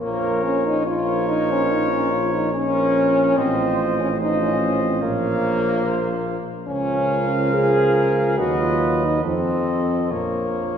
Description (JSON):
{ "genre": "classical, brass quintet", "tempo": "71 BPM", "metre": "4/4", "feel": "rubato", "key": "Bb minor", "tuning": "A4 = 437 Hz", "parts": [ { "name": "warm cornet", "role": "melody", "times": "0.0-10.8 s", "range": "Db5 to F5", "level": "-26 LUFS", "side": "left 3 dB", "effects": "none" }, { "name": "mellow flugelhorn", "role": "second line", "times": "0.0-10.8 s", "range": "A4 to Db5", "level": "-27 LUFS", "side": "right 5 dB", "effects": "none" }, { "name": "clear trombone", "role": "accompaniment", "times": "0.0-10.8 s", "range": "F3 to F#3", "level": "-27 LUFS", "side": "right 1 dB", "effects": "none" }, { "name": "mellow French horn", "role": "accompaniment", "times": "0.0-10.8 s", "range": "Bb3 to Ab4", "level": "-22 LUFS", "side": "left 1 dB", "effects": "none" }, { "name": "mellow tuba", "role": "bass", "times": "0.0-10.8 s", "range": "A1 to F2", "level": "-25 LUFS", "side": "right 2 dB", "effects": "none" } ], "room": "wet concert hall reverb, RT60 2.4 s", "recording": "heard from further back in the room", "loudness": "-18 LUFS", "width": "side -8 dB against mid", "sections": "0.0-10.8 A section", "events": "none", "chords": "0.0 Bbm; 3.4 F7/A; 5.0 Bbm; 6.7 Bbm/Db; 8.4 B/D#; 9.2 F7; 10.1 Bbm", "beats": "| 0.01 0.86 1.71 2.54 | 3.37 4.20 5.03 5.84 | 6.67 7.53 8.38 9.24 | 10.11" }